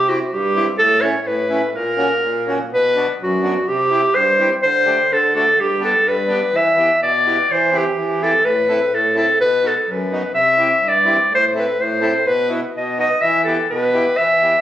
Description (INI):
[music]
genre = alpine folk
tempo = 126 BPM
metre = 2/4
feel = straight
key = G major, E minor from 6.5 s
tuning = A4 = 440 Hz
[part]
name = clear clarinet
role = melody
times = 0.0-14.6 s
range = F#4 to E5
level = -15 LUFS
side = equal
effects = none
[part]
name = accordion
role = accompaniment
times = 0.0-14.5 s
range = F#2 to A4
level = -22 LUFS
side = left 1 dB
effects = none
[sound]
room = moderate studio reverb, RT60 0.6 s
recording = recorded on a phone in the room, club reverb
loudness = -14 LUFS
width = side -12 dB against mid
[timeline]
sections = 0.0-6.5 A section; 6.5-14.2 B section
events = none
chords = 0.0 C; 0.8 A; 1.8 F#/A#; 2.7 Bm; 3.7 C; 4.6 D7sus4; 5.1 D; 5.6 G; 6.5 Em; 7.5 C/E; 8.5 Am; 9.4 B; 10.4 C; 11.3 Am; 12.3 Bsus4; 12.7 B; 13.2 Em